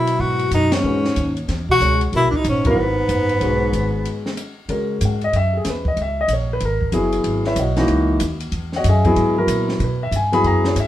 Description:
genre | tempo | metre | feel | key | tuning
modal jazz | 188 BPM | 4/4 | swing 64% on 8ths | C# dorian | A4 = 442 Hz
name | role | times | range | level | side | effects
clear tenor saxophone | melody | 0.0-4.4 s | B3 to F#4 | -20 LUFS | equal | none
mellow bass clarinet | second line | 0.0-4.3 s | G#2 to B2 | -23 LUFS | equal | none
warm concert grand piano | accompaniment | 0.0-10.9 s | E3 to B5 | -20 LUFS | left 1 dB | none
upright bass | bass | 0.0-10.9 s | F#1 to C#3 | -21 LUFS | equal | none
compact cocktail drum kit | drums | 0.1-10.9 s | hi-hat, kick drum, ride cymbal, snare drum | -28 LUFS | equal | none
room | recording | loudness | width
wet studio reverb, RT60 0.8 s | band playing live in one room | -16 LUFS | side -13 dB against mid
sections
0.0-4.7 A section; 4.7-10.9 B section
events
band accent 0.7, 2.6; break 4.0-4.7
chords
0.0 C#m11; 9.8 Eadd9

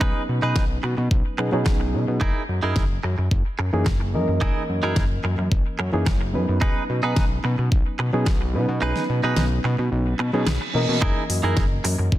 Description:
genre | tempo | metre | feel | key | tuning
nu-disco, nu disco | 109 BPM | 4/4 | straight | unclear | A4 = 440 Hz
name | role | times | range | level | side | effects
reed electric piano | accompaniment | 0.0-12.2 s | E3 to D#5 | -26 LUFS | equal | fast tremolo, sidechain pumping, ping-pong delay
direct-recorded clean electric guitar | riff | 0.0-12.0 s | D#4 to B4 | -28 LUFS | right 3 dB | lush chorus, ping-pong delay
fat analog bass | bass | 0.0-12.2 s | F#1 to B2 | -24 LUFS | equal | none
electronic kick drum | drums | 0.0-12.2 s | none | -22 LUFS | equal | none
pop drum kit | drums | 0.6-12.0 s | hi-hat, snare drum | -30 LUFS | equal | none
reverse cymbal | sound effects | 10.2-11.0 s | none | -31 LUFS | right 4 dB | none
room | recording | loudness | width
light reverb | dense, heavily limited modern master | -20 LUFS | side -14 dB against mid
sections
0.0-12.2 A section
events
kick drops out 8.8-11.0; reverse cymbal 10.2-11.0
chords
0.0 B6; 2.2 F#13; 6.6 B6; 11.0 F#13

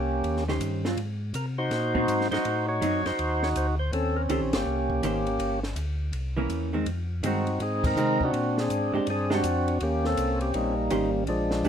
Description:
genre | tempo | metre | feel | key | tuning
soul jazz organ trio | 163 BPM | 4/4 | swing 64% on 8ths | Eb mixolydian | A4 = 440 Hz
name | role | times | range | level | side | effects
percussive tonewheel organ | melody | 0.0-11.7 s | F3 to Db5 | -26 LUFS | equal | overdrive, slow rotary speaker
mellow tonewheel organ | bass | 0.0-11.7 s | G1 to C3 | -30 LUFS | equal | slow rotary speaker
compact cocktail drum kit | drums | 0.2-11.7 s | crash cymbal, hi-hat, kick drum, ride cymbal, snare drum | -35 LUFS | equal | none
vintage hollow-body jazz guitar | accompaniment | 0.5-11.7 s | Eb3 to C5 | -29 LUFS | right 2 dB | none
room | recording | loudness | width
light reverb | minimal, uncompressed stereo recording | -24 LUFS | side -8 dB against mid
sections
0.0-11.7 A section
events
band accent 4.5, 7.8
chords
0.0 Eb13; 1.0 Ab9; 2.5 Adim7; 3.9 Eb6; 5.4 Gm; 6.1 C7b9; 6.9 Fm7; 8.3 Bb13; 9.8 Eb6

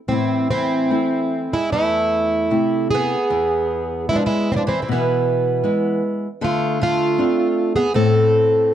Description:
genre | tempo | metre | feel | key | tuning
fado-style ballad | 76 BPM | 4/4 | rubato | A harmonic minor | A4 = 438 Hz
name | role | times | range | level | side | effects
fingerpicked plugged-in twelve-string acoustic guitar | melody | 0.1-8.7 s | B3 to A4 | -19 LUFS | right 2 dB | none
fingerpicked twelve-string acoustic guitar | second line | 0.1-8.7 s | E3 to C4 | -25 LUFS | equal | none
nylon-string guitar | accompaniment | 0.1-8.7 s | E2 to F4 | -22 LUFS | left 3 dB | none
room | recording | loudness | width
light reverb | dark, warm production | -17 LUFS | side -10 dB against mid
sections
0.1-8.7 A section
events
none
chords
0.1 Am; 3.3 E; 6.4 Dm7

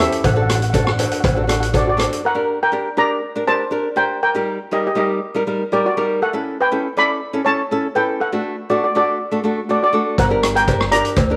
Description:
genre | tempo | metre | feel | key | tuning
calypso | 121 BPM | 4/4 | straight | G harmonic minor | A4 = 441 Hz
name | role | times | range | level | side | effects
steel pan | melody | 0.0-11.4 s | F#4 to B5 | -21 LUFS | equal | none
nylon-string guitar | accompaniment | 0.0-11.4 s | G3 to C5 | -24 LUFS | equal | none
upright bass | bass | 0.0-2.0, 10.2-11.4 s | G1 to D2 | -24 LUFS | equal | none
street-band drum kit | drums | 0.0-2.2, 10.2-11.3 s | hi-hat, kick drum, rim click | -23 LUFS | equal | none
cowbell | percussion | 0.2-2.1, 10.2-11.3 s | none | -26 LUFS | equal | none
room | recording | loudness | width
moderate echo chamber reverb, RT60 1.4 s, studio ambience | none | -18 LUFS | mono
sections
0.0-2.2 A section; 2.2-11.4 A section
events
none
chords
0.2 D/A; 2.2 Gm; 4.2 Eb/G; 6.2 A; 8.2 D/A; 10.2 Gm

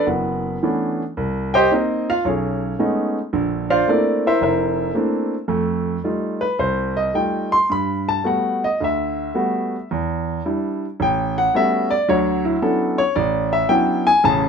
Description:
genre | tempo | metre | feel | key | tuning
solo jazz | 111 BPM | 4/4 | swing 68% on 8ths, rubato | unclear | A4 = 440 Hz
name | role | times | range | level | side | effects
warm grand piano | solo | 0.0-14.5 s | F1 to C6 | -18 LUFS | equal | none
room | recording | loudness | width
moderate small room reverb, RT60 0.6 s | minimal, uncompressed stereo recording | -18 LUFS | side -6 dB against mid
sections
0.0-14.5 A section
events
grand piano solo 0.0-14.5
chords
0.0 Bm11; 1.2 Cm7; 2.2 B13; 3.3 Bbmaj9#11; 5.5 F9; 7.7 Gmaj9; 9.9 Em7; 11.0 A13; 12.1 Dmaj13

